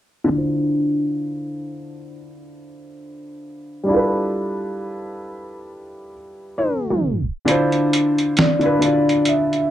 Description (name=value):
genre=lo-fi hip hop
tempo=67 BPM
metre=4/4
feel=swing 56% on 16ths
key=D dorian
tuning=A4 = 440 Hz
part: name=felt-muted upright piano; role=accompaniment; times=0.2-9.7 s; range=D3 to F5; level=-20 LUFS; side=equal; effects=low-pass filter, plate reverb
part: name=dusty soul sampler-style drum kit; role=drums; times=7.5-9.7 s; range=hi-hat, snare drum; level=-20 LUFS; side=right 1 dB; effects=overdrive
part: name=vibraphone with soft mallets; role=melody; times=8.4-9.7 s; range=D5 to E5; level=-21 LUFS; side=equal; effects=low-pass filter, plate reverb
room=moderate small room reverb, RT60 0.5 s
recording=dark, warm production, tape stop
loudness=-17 LUFS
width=side -12 dB against mid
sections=0.3-7.5 A section; 7.5-9.7 B section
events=filter sweep on felt piano 0.3-7.5; tape stop 6.6-7.5; kick muted 7.5-9.7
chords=0.3 Dm9; 3.9 G13; 7.5 Dm9